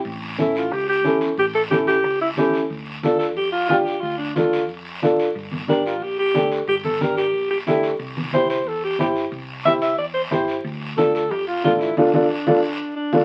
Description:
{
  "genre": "latin, cumbia",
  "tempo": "181 BPM",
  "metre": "4/4",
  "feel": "straight",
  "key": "D minor",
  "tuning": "A4 = 440 Hz",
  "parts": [
    { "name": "guiro", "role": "percussion", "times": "0.0-13.2 s", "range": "none", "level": "-36 LUFS", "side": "equal", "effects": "none" },
    { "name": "hollow-body short-scale fingered electric bass", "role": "bass", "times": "0.1-13.2 s", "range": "G1 to G2", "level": "-38 LUFS", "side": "equal", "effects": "none" },
    { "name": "warm alto saxophone", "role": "melody", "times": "0.4-13.2 s", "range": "D4 to E5", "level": "-24 LUFS", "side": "equal", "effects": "none" },
    { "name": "dark upright piano", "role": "accompaniment", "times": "0.4-13.2 s", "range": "C#4 to C5", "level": "-22 LUFS", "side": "equal", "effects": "none" },
    { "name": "congas", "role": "percussion", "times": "0.4-13.2 s", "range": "none", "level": "-29 LUFS", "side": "equal", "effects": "none" }
  ],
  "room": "moderate studio reverb, RT60 0.7 s",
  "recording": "very old 78 rpm record, vinyl crackle",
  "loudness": "-21 LUFS",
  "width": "mono",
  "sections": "0.0-13.2 A section",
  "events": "band accent 12.0-13.2",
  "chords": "0.1 A7; 2.7 Dm; 5.4 Gm; 8.0 C; 10.6 Dm",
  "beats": "| 0.06 0.39 0.72 1.05 | 1.38 1.71 2.04 2.38 | 2.71 3.04 3.37 3.70 | 4.03 4.36 4.69 5.02 | 5.36 5.69 6.02 6.35 | 6.68 7.01 7.34 7.67 | 8.00 8.33 8.66 8.99 | 9.32 9.66 9.99 10.32 | 10.65 10.98 11.31 11.64 | 11.97 12.30 12.63 12.96"
}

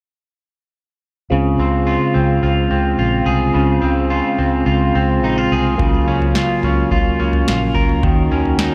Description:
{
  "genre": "dream pop",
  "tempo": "107 BPM",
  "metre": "4/4",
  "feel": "straight",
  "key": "Db major",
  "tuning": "A4 = 440 Hz",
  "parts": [
    { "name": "percussive tonewheel organ", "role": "sustained chords", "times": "1.3-8.7 s", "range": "Db3 to Gb4", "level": "-21 LUFS", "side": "equal", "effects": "chorus vibrato, slow rotary speaker" },
    { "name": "electric guitar at the edge of break-up", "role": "arpeggios", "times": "1.3-8.7 s", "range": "Db3 to Bb4", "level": "-21 LUFS", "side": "equal", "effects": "subtle chorus, delay" },
    { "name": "vintage muted fingered electric bass", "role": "bass", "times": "1.3-8.7 s", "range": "Bb1 to Eb2", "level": "-22 LUFS", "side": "equal", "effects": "none" },
    { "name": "booming analog drum machine", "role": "drums", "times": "5.8-8.7 s", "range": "kick drum, snare drum, toms", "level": "-21 LUFS", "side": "equal", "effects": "overdrive" }
  ],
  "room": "moderate huge ambient reverb, RT60 3.7 s",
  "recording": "none",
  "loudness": "-16 LUFS",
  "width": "mono",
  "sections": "1.3-8.7 A section",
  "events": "none",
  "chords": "1.3 Dbmaj7; 5.8 Gbmaj7/Db; 8.0 Ebm7",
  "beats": "| 1.31 1.87 2.43 2.99 | 3.55 4.11 4.67 5.23 | 5.79 6.35 6.92 7.47 | 8.04 8.60"
}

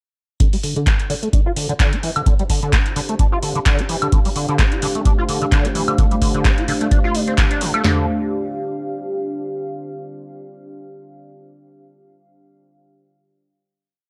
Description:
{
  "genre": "acid house",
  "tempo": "129 BPM",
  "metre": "4/4",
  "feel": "swing 55% on 16ths",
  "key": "D minor",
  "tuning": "A4 = 439 Hz",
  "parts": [
    { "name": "liquid acid bass", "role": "riff", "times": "0.4-8.1 s", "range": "D3 to F4", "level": "-25 LUFS", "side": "equal", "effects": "tube saturation, ensemble chorus, analog delay" },
    { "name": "booming analog drum machine", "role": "drums", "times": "0.4-8.0 s", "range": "handclaps, kick drum, snare drum, toms", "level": "-19 LUFS", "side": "equal", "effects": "none" },
    { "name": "booming analog drum machine", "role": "drums", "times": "0.4-7.8 s", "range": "handclaps, hi-hat, woodblock", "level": "-26 LUFS", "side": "equal", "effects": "none" },
    { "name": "deep dark ambient pad", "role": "texture", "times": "2.1-9.7 s", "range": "D4 to F5", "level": "-30 LUFS", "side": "equal", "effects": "chorus, built-in reverb, sidechain pumping" },
    { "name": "dark analog pad", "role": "sustained chords", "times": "4.8-8.1 s", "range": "A3 to F5", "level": "-27 LUFS", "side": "equal", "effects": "chorus, sidechain pumping" }
  ],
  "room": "little or no reverb",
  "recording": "dry, gritty hardware recording, transformer saturation",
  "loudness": "-18 LUFS",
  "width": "mono",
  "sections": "0.4-7.8 groove; 7.8-9.7 final chord",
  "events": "filter sweep on acid bass 0.4-7.8",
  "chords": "0.4 Dm7",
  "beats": "| 0.40 0.87 1.33 1.80 | 2.26 2.73 3.19 3.66 | 4.12 4.59 5.05 5.52 | 5.98 6.45 6.91 7.38 | 7.84 8.31 8.78 9.24"
}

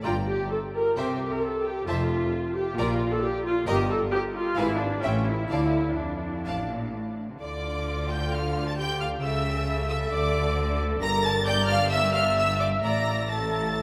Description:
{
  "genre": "quick classical-period movement for string orchestra",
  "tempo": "132 BPM",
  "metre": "4/4",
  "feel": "rubato",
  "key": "D minor",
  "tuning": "A4 = 440 Hz",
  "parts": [
    { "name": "rich studio violin section", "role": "melody", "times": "0.0-13.8 s", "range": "G5 to Bb6", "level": "-35 LUFS", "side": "equal", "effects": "none" },
    { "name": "clear chamber violin section", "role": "second line", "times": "0.0-13.8 s", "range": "Bb4 to Bb5", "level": "-35 LUFS", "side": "equal", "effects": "none" },
    { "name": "rich chamber viola section", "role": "accompaniment", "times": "0.0-13.8 s", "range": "C#4 to E5", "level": "-30 LUFS", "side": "equal", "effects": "none" },
    { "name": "rich chamber cello section", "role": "bass", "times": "0.0-13.8 s", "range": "F2 to D3", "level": "-34 LUFS", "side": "equal", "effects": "none" },
    { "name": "rich chamber double bass section", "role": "bass", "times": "0.0-13.8 s", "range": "F1 to D2", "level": "-34 LUFS", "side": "equal", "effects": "none" }
  ],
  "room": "wet cathedral reverb, RT60 5.9 s",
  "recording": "in a vast, echoing space",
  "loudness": "-26 LUFS",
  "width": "mono",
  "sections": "0.0-7.4 A section; 7.4-13.8 B section",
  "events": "none",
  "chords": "0.0 Gm; 1.0 C; 1.9 Fmaj7; 2.8 Bb; 3.7 Eb/G; 4.6 G#dim7; 5.0 A7; 5.5 Dm; 9.2 A/C#; 10.1 D5; 11.0 Gm; 12.8 D5/A",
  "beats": "| 0.04 0.51 0.97 1.43 | 1.88 2.32 2.78 3.23 | 3.67 4.12 4.58 5.04 | 5.51 5.98 6.46 6.93 | 7.40 7.87 8.32 8.77 | 9.22 9.68 10.13 10.58 | 11.02 11.47 11.92 12.37 | 12.84 13.30 13.77"
}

